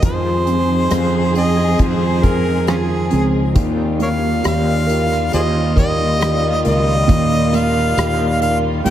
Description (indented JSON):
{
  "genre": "pop ballad",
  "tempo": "68 BPM",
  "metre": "4/4",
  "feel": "straight",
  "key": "unclear",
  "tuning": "A4 = 440 Hz",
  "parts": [
    { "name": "clear harmonica", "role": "melody", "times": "0.0-8.9 s", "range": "Db4 to G5", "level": "-20 LUFS", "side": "right 1 dB", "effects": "none" },
    { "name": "felt-muted upright piano", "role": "accompaniment", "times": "0.0-8.9 s", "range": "Bb2 to Bb4", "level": "-21 LUFS", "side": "right 4 dB", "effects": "none" },
    { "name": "warm studio string section", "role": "sustained chords", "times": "0.0-8.9 s", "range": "Eb3 to Ab4", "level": "-22 LUFS", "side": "left 2 dB", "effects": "none" },
    { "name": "fingerpicked steel-string acoustic guitar", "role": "arpeggios", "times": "0.0-8.9 s", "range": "F2 to G4", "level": "-26 LUFS", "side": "left 5 dB", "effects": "wide subtle chorus, tape echo" },
    { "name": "fretless electric bass", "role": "bass", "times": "0.0-8.9 s", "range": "Db2 to F2", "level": "-19 LUFS", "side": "equal", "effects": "lush chorus" },
    { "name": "unplugged drum kit", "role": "drums", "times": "0.0-8.9 s", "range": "hi-hat, kick drum, rim click", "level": "-19 LUFS", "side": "equal", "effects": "none" }
  ],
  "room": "moderate plate reverb, RT60 3.3 s",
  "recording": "dreamy mix soaked in reverb",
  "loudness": "-14 LUFS",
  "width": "side -11 dB against mid",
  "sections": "0.0-8.9 A section",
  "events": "none",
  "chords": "0.0 Fm7; 3.6 Ebadd9"
}